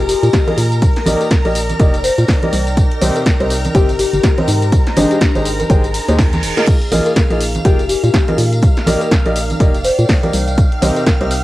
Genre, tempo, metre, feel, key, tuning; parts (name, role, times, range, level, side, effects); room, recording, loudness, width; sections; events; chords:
piano house; 123 BPM; 4/4; swing 59% on 16ths; A4 = 435 Hz
string machine, violins; sustained chords; 0.0-11.4 s; Bb4 to F6; -26 LUFS; equal; ensemble chorus, sidechain pumping, cassette tape
organ-like FM bass; bass; 0.0-11.4 s; Eb1 to Bb2; -17 LUFS; equal; sidechain pumping
punchy analog drum machine; drums; 0.0-11.4 s; crash cymbal, hi-hat, snare drum, tambourine; -22 LUFS; equal
warbly tape-like pad; texture; 0.0-11.4 s; Eb4 to Ab5; -27 LUFS; right 2 dB; chorus, built-in reverb, sidechain pumping, cassette tape
buzzing marimba with soft mallets; melody; 0.1-11.2 s; D4 to C5; -21 LUFS; left 3 dB; cassette tape, tape echo
tambourine and congas; percussion; 0.1-11.4 s; -24 LUFS; right 2 dB
electronic kick drum; drums; 0.3-11.2 s; -13 LUFS; equal
clear grand piano; riff; 0.5-11.3 s; C3 to G5; -19 LUFS; equal; sidechain pumping, cassette tape, tape echo
reverse cymbal; sound effects; 6.1-6.7 s; -24 LUFS; right 5 dB
little or no reverb; home recording on cassette; -11 LUFS; side -16 dB against mid
0.0-11.4 A section
reverse cymbal 6.1-6.7; drum fill 6.2-6.7
0.0 Bb7sus4; 0.6 Ebmaj7/Bb; 2.8 Cm7; 4.7 Abmaj7; 6.7 Bb7sus4; 8.4 Ebmaj7/Bb; 10.6 Cm7